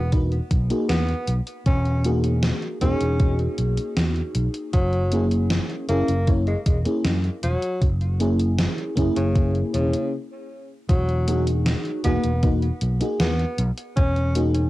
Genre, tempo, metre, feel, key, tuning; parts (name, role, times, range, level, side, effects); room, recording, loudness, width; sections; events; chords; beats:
vaporwave; 78 BPM; 4/4; straight; E lydian; A4 = 436 Hz
breathy tenor saxophone; melody; 0.0-14.4 s; C#3 to C#4; -29 LUFS; equal; cassette tape, tape echo
fingered electric bass; bass; 0.0-14.7 s; E1 to F#2; -22 LUFS; equal; tube saturation
FM electric piano with soft pad layer; accompaniment; 0.1-14.7 s; A#3 to C#5; -25 LUFS; equal; lush chorus, cassette tape, analog delay
electronic kick drum; drums; 0.1-14.1 s; -20 LUFS; equal; overdrive, cassette tape
gated 80s digital drum machine; drums; 0.1-14.7 s; hi-hat, snare drum; -27 LUFS; equal; gated reverb, gated reverb snare, overdrive, cassette tape
light reverb; home recording on cassette; -20 LUFS; side -17 dB against mid
0.0-10.9 A section; 10.9-14.7 B section
stop 10.1-10.9
0.0 Emaj9#11; 4.7 F#9; 10.9 Emaj9#11
0.12 0.89 | 1.66 2.43 3.20 3.97 | 4.74 5.51 6.28 7.05 | 7.82 8.59 9.36 10.12 | 10.89 11.66 12.43 13.20 | 13.97